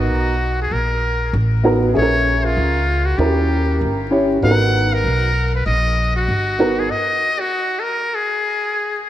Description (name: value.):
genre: hip hop, jazz-hop.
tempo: 97 BPM.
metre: 4/4.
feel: swing 61% on 16ths.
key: unclear.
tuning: A4 = 441 Hz.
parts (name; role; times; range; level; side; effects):
trumpet with metal mute; melody; 0.0-9.1 s; E#4 to F#5; -20 LUFS; left 1 dB; ping-pong delay.
dark upright piano; accompaniment; 0.0-6.8 s; B3 to E5; -19 LUFS; right 1 dB; none.
upright bass; bass; 0.0-6.9 s; G1 to D#2; -19 LUFS; equal; none.
room: moderate lush hall reverb, RT60 2.4 s.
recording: dreamy mix soaked in reverb, vinyl crackle.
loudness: -15 LUFS.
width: side -12 dB against mid.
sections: 0.0-9.1 A section.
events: stop 6.9-9.1.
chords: 0.0 G#m9 (rootless); 2.0 A#m7b5; 3.2 D#7b9; 4.4 G#m9.